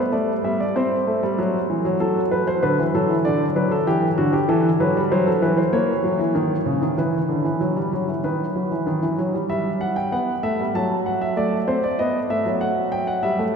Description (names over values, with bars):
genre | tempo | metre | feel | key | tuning
classical, baroque-style two-part invention for grand piano | 96 BPM | 4/4 | straight | E minor from 4.5 s | A4 = 440 Hz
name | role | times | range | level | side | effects
warm grand piano | solo | 0.0-13.5 s | C#3 to A5 | -19 LUFS | equal | none
room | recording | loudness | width
wet cathedral reverb, RT60 4.7 s | recorded in a church or concert hall | -19 LUFS | side -6 dB against mid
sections
0.0-9.5 A section; 9.5-13.6 B section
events
none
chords
0.0 G; 0.7 N.C.; 2.0 F#m; 3.2 Bm7/D; 4.5 F#m7b5/E; 5.7 A#dim; 7.0 Em; 8.2 B/D#; 9.5 Em/G; 10.7 F#dim; 12.0 B7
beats
0.12 0.75 1.38 | 2.00 2.62 3.25 3.87 | 4.50 5.12 5.74 6.36 | 6.98 7.61 8.24 8.87 | 9.50 10.12 10.75 11.37 | 11.99 12.61 13.23